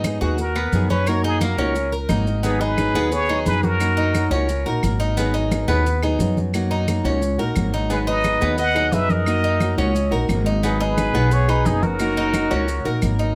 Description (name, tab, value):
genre	latin, Cuban son and guajira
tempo	176 BPM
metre	4/4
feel	straight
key	G# minor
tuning	A4 = 440 Hz
part	trumpet with plunger mute	melody	0.0-4.3, 7.9-13.0 s	G#4 to F#5	-27 LUFS	equal	plate reverb, tape echo
part	nylon-string guitar	accompaniment	0.0-13.3 s	D#3 to G#4	-28 LUFS	equal	none
part	Cuban tres	arpeggios	0.0-13.3 s	A#3 to A#4	-27 LUFS	equal	none
part	upright bass	bass	0.0-13.3 s	F#1 to G#2	-24 LUFS	equal	none
part	claves	percussion	0.0-13.2 s	none	-36 LUFS	equal	none
part	congas	percussion	0.0-13.3 s	none	-29 LUFS	equal	none
part	maracas	percussion	0.0-13.3 s	none	-42 LUFS	equal	none
part	warm trumpet	second line	2.4-4.3, 7.9-13.0 s	D#4 to D#5	-30 LUFS	equal	none
room	moderate studio reverb, RT60 0.6 s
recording	none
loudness	-20 LUFS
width	mono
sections	0.0-2.4 A section; 2.4-13.3 B section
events	muted trumpet solo 0.0-2.4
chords	0.0 G#m7; 1.1 F#6; 2.4 G#m7; 3.8 F#6; 5.2 G#m7; 6.5 F#6; 7.9 G#m7; 9.3 F#6; 10.6 G#m7; 12.0 F#6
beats	0.04 0.38 0.73 | 1.07 1.41 1.75 2.10 | 2.44 2.78 3.12 3.46 | 3.81 4.15 4.49 4.83 | 5.17 5.52 5.86 6.20 | 6.54 6.88 7.22 7.57 | 7.91 8.25 8.59 8.93 | 9.27 9.61 9.95 10.29 | 10.64 10.98 11.32 11.66 | 12.00 12.34 12.68 13.02